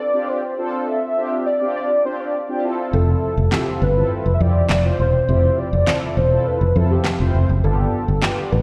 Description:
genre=dance-pop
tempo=102 BPM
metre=4/4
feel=straight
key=unclear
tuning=A4 = 439 Hz
part: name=warm velvety synth lead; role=melody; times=0.0-8.6 s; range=G4 to E5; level=-24 LUFS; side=equal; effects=chorus, slapback echo, digital delay
part: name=mellow synth brass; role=accompaniment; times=0.1-8.5 s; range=B3 to C5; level=-27 LUFS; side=equal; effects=chorus, slapback echo
part: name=fingered electric bass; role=bass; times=2.9-8.6 s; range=E1 to F2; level=-19 LUFS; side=equal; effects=none
part: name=electronic snare drum and handclaps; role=drums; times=3.5-8.4 s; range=none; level=-24 LUFS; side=equal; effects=slapback echo
room=light reverb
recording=live gig heard through the venue's PA, recital hall reverb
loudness=-19 LUFS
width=mono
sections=0.0-8.6 A section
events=none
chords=0.0 G7sus4; 2.6 Fmaj7; 7.6 G7

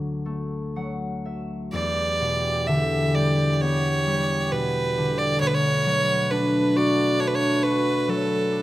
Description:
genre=celtic folk, Celtic slow air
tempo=59-68 BPM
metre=4/4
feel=rubato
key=unclear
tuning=A4 = 441 Hz
part: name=concert harp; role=accompaniment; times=0.0-8.6 s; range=D2 to F#5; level=-24 LUFS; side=left 1 dB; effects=none
part: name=rich fiddle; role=melody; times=1.7-8.6 s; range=A4 to E5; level=-24 LUFS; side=right 2 dB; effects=none
part: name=mellow brass ensemble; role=sustained chords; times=1.7-8.6 s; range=E3 to B4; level=-32 LUFS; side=right 1 dB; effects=none
room=light reverb, studio reverb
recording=rough home demo mix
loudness=-21 LUFS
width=side -16 dB against mid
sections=0.0-1.7 A section; 1.7-8.6 B section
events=harp fill 0.3-1.7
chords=0.0 D; 1.7 Em7; 5.4 Bm7

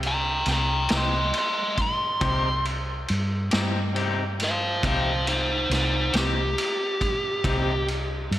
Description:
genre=slow blues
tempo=46 BPM (dotted quarters)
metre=12/8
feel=straight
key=unclear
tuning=A4 = 440 Hz
part: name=hollow-body short-scale fingered electric bass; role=bass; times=0.0-8.4 s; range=C2 to G2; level=-27 LUFS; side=equal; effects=none
part: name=vintage drum kit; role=drums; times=0.0-8.4 s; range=kick drum, ride cymbal, snare drum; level=-29 LUFS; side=equal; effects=none
part: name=dark smooth lead guitar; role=melody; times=0.1-7.9 s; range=Eb4 to C6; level=-25 LUFS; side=equal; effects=overdrive
part: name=electric guitar at the edge of break-up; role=accompaniment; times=0.9-7.7 s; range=C3 to G4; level=-32 LUFS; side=left 4 dB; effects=harmonic tremolo, slapback echo
room=moderate lush hall reverb, RT60 2.4 s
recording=big arena sound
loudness=-22 LUFS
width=side -13 dB against mid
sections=0.0-8.4 A section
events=lead electric guitar solo 0.0-8.4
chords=0.0 Cm

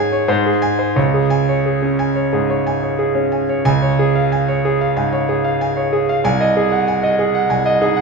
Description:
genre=classical, virtuoso piano study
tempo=87-98 BPM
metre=4/4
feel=rubato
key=Db major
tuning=A4 = 437 Hz
part: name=bright concert grand piano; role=solo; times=0.0-8.0 s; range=C2 to Ab5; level=-14 LUFS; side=right 2 dB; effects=none
room=wet recital hall reverb, RT60 1.5 s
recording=studio reverb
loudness=-14 LUFS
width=side -4 dB against mid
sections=0.0-3.7 A section; 3.7-8.0 B section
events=none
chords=0.3 Ab; 1.0 Db5; 3.7 Db; 6.2 Ab7/C

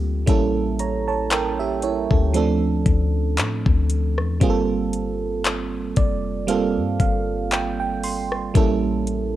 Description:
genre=contemporary R&B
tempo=58 BPM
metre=4/4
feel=swing 54% on 16ths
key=unclear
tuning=A4 = 440 Hz
part: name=FM electric piano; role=accompaniment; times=0.0-9.4 s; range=F3 to C6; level=-22 LUFS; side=right 6 dB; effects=chorus, cassette tape
part: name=clean 808-style bass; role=bass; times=0.0-9.4 s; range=F1 to A2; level=-25 LUFS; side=left 2 dB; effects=none
part: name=smooth R&B drum kit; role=drums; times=0.3-9.3 s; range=handclaps, hi-hat, kick drum, rim click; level=-21 LUFS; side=left 2 dB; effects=cassette tape
room=digital ambience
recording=home recording on cassette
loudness=-19 LUFS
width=side -13 dB against mid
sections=0.0-9.4 A section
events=FM electric piano fill 5.4-8.6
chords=0.3 A7b9; 2.3 Dm7; 4.4 Gm11; 8.6 A7b9

